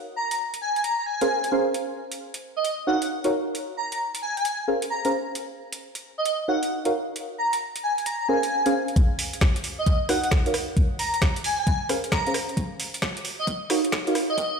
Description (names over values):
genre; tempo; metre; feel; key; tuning
UK garage, two-step garage; 133 BPM; 4/4; swing 65% on 16ths; Eb dorian; A4 = 440 Hz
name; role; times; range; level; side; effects
airy dreamy lead; melody; 0.2-14.6 s; Eb5 to Bb5; -27 LUFS; equal; chorus, ping-pong delay
garage drum kit; drums; 0.3-14.5 s; hi-hat, rim click, snare drum; -30 LUFS; right 1 dB; overdrive, high-pass filter on hats, high-pass filter on snare
deep mellow chord stab; stabs; 1.2-14.1 s; Db4 to F5; -26 LUFS; right 1 dB; chorus, phaser, vintage 12-bit sampler grit, ping-pong delay
electronic kick drum; drums; 9.0-14.5 s; none; -22 LUFS; equal; overdrive
room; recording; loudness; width
moderate lush hall reverb, RT60 1.9 s; played on a big sound system in a bare room, stone room reverb, high-pass filter; -22 LUFS; side -5 dB against mid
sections
0.0-9.0 A section; 9.0-14.6 B section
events
build-up 9.0-14.6; filter sweep 9.0-14.6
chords
0.0 Bbm7; 1.7 Ebm7; 3.3 Bbm7; 5.4 Ebm7; 6.9 Bbm7; 9.0 Ebm7; 10.5 Bbm7; 12.6 Ebm7